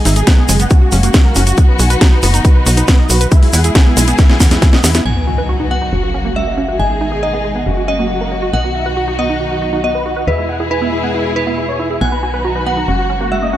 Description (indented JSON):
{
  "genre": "uplifting trance",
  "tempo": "138 BPM",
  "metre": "4/4",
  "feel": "straight",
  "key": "B major",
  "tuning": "A4 = 440 Hz",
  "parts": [
    { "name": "big supersaw lead", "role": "melody", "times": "0.0-13.6 s", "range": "E4 to A#5", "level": "-22 LUFS", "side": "equal", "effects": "sidechain pumping, low-pass filter, dub echo" },
    { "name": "warm studio string section", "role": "sustained chords", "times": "0.0-13.6 s", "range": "B2 to G#4", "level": "-22 LUFS", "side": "left 2 dB", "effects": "sidechain pumping" },
    { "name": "analog pluck", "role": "arpeggios", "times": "0.1-13.6 s", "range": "G#3 to G#5", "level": "-22 LUFS", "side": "right 4 dB", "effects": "chorus, sidechain pumping, dub echo" },
    { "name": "tight sequencer bass", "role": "bass", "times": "0.1-13.6 s", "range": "F#1 to E2", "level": "-17 LUFS", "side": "equal", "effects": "sidechain pumping" },
    { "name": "house drum kit", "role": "drums", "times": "0.1-5.1 s", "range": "crash cymbal, hi-hat, snare drum", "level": "-17 LUFS", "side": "left 1 dB", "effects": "low-pass filter on hats, low-pass filter on snare, low-pass filter on cymbals, low-pass filter on room" },
    { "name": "egg shaker", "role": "percussion", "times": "0.1-5.0 s", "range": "none", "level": "-21 LUFS", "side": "right 4 dB", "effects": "none" },
    { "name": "electronic kick drum", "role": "drums", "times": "0.3-4.7 s", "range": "none", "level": "-9 LUFS", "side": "equal", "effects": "none" },
    { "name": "glassy synth bell", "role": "second line", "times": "5.1-13.6 s", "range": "B4 to G#5", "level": "-20 LUFS", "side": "equal", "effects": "chorus, phaser, dub echo" },
    { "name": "impact", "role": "sound effects", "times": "5.1-6.8 s", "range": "none", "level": "-21 LUFS", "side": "equal", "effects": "none" }
  ],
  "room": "digital ambience",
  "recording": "none",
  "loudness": "-11 LUFS",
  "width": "side -13 dB against mid",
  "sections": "0.0-5.1 A section; 5.1-13.6 B section",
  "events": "drum fill 4.2-5.1; impact 5.1-6.8; filter sweep on supersaw synth 5.1-13.6",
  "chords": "0.0 G#m; 0.7 F#add9; 1.6 B; 3.3 E; 5.1 B; 5.9 F#add9; 6.8 G#m; 7.7 F#add9; 8.5 B; 10.3 E; 12.0 B; 12.9 F#add9"
}